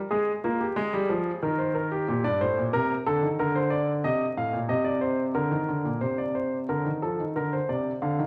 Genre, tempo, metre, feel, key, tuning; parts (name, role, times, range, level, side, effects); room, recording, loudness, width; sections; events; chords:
classical, baroque-style two-part invention for grand piano; 91 BPM; 3/4; straight; A4 = 440 Hz
warm concert grand piano; solo; 0.0-8.3 s; G2 to F5; -27 LUFS; equal
wet recital hall reverb, RT60 1.7 s; vinyl crackle; -27 LUFS; mono
0.0-6.0 A section; 6.0-8.3 B section
0.1 Fm/Ab; 1.4 Cm/Eb; 2.1 Gm; 3.4 Bbadd9/D; 4.0 Cm; 5.4 Bbadd11; 6.0 F7/C; 7.4 Bb/D